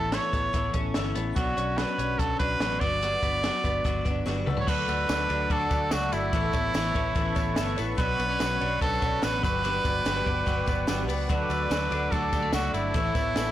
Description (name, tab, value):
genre	jangly indie pop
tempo	145 BPM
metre	4/4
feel	straight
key	D major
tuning	A4 = 441 Hz
part	bright trumpet	melody	0.0-13.5 s	E4 to D5	-28 LUFS	right 1 dB	plate reverb
part	picked twelve-string acoustic guitar	accompaniment	0.0-13.5 s	B2 to C#5	-34 LUFS	right 3 dB	plate reverb
part	twelve-string electric guitar	arpeggios	0.0-13.5 s	E3 to D4	-33 LUFS	left 7 dB	none
part	vintage muted fingered electric bass	bass	0.0-13.5 s	G1 to D2	-32 LUFS	equal	none
part	compact cocktail drum kit	drums	0.1-13.5 s	crash cymbal, hi-hat, kick drum, ride cymbal, snare drum, toms	-30 LUFS	equal	none
part	warm analog pad	sustained chords	4.7-13.5 s	A4 to D6	-37 LUFS	left 1 dB	chorus, tremolo, plate reverb
part	tambourine	percussion	4.7-13.5 s	none	-46 LUFS	left 4 dB	none
room	light reverb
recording	blown-out, overdriven recording, overdrive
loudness	-24 LUFS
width	side -12 dB against mid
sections	0.0-4.7 A section; 4.7-13.5 B section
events	drum fill 4.3-4.7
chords	0.0 Aadd9; 1.4 Bmadd9; 2.8 Gmaj7; 4.7 D; 6.3 Aadd9; 8.0 Bmadd9; 9.4 Gmaj7; 11.3 D; 12.9 Aadd9